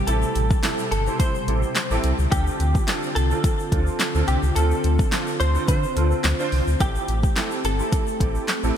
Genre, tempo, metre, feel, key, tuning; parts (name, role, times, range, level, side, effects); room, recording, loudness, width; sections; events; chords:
dance-pop; 107 BPM; 4/4; straight; A minor; A4 = 440 Hz
direct-recorded clean electric guitar; melody; 0.0-8.8 s; G4 to C5; -28 LUFS; equal; ensemble chorus, ping-pong delay
airy breathy pad; sustained chords; 0.0-8.8 s; B2 to G4; -30 LUFS; left 1 dB; chorus, sidechain pumping
sub bass with octave; bass; 0.0-8.7 s; G1 to D3; -22 LUFS; equal; sidechain pumping
clear baby grand piano; accompaniment; 0.1-8.8 s; C4 to C5; -29 LUFS; right 3 dB; ensemble chorus
deep house drum kit; drums; 0.1-8.6 s; handclaps, hi-hat, kick drum, snare drum; -24 LUFS; equal
egg shaker; percussion; 0.1-8.8 s; -40 LUFS; left 9 dB
light reverb; bright 1980s-style digital production; -19 LUFS; side -9 dB against mid
0.0-8.8 A section
0.0 Am7; 2.3 Dm7; 6.8 Am7